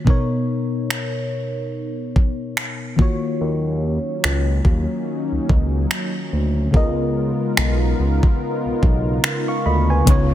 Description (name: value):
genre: contemporary R&B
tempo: 72 BPM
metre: 4/4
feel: swing 58% on 16ths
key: unclear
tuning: A4 = 439 Hz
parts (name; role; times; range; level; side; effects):
- mellow FM electric piano; accompaniment; 0.0-10.3 s; B2 to Db6; -23 LUFS; left 2 dB; chorus, phaser
- smooth R&B drum kit; drums; 0.1-10.3 s; finger snaps, hi-hat, kick drum; -18 LUFS; equal; soft clipping on snare
- warm analog pad; sustained chords; 3.4-10.3 s; Db3 to Bb4; -25 LUFS; equal; chorus
- smooth synth bass; bass; 3.4-10.3 s; Cb2 to Eb2; -20 LUFS; equal; none
- impact; sound effects; 10.1-10.3 s; none; -25 LUFS; equal; none
room: digital ambience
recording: dense, heavily limited modern master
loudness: -18 LUFS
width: side -12 dB against mid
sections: 0.0-10.1 A section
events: impact 10.1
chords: 0.1 Bmaj7; 3.0 Ebm7; 6.7 Db13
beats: | 0.07 0.91 1.74 2.57 | 3.41 4.24 5.07 5.91 | 6.74 7.57 8.41 9.24 | 10.07